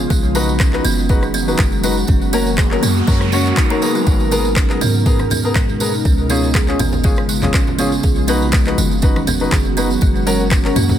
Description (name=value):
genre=afro house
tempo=121 BPM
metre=4/4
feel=swing 54% on 16ths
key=unclear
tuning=A4 = 440 Hz
part: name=ethereal airy pad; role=sustained chords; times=0.0-11.0 s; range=B2 to A#4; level=-23 LUFS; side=right 1 dB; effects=ensemble chorus, built-in reverb, sidechain pumping
part: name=warm 808-style bass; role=bass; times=0.0-11.0 s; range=F#1 to G#2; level=-20 LUFS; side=equal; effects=sidechain pumping
part: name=tambourine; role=percussion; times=0.0-11.0 s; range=none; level=-26 LUFS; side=right 6 dB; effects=none
part: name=kalimba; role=arpeggios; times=0.1-10.9 s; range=G#3 to G#4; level=-21 LUFS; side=right 1 dB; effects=sidechain pumping, diffuse ambient delay
part: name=electronic kick drum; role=drums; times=0.1-10.6 s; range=none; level=-16 LUFS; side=equal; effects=studio reverb
part: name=felt-muted upright piano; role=stabs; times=0.4-10.7 s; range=B3 to C#5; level=-22 LUFS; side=left 3 dB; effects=sidechain pumping, diffuse ambient delay
part: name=electronic rim click and handclaps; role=drums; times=0.6-10.7 s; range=none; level=-24 LUFS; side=equal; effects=studio reverb
part: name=noise sweep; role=sound effects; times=2.5-4.1 s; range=none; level=-27 LUFS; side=right 4 dB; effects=none
part: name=congas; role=percussion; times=4.3-11.0 s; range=none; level=-25 LUFS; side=left 2 dB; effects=none
room=light reverb, studio reverb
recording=none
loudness=-13 LUFS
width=side -10 dB against mid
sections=0.0-11.0 A section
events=noise sweep 2.5-4.1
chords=0.1 B; 2.1 F#; 4.1 G#madd9; 6.1 C#; 8.0 B; 10.0 F#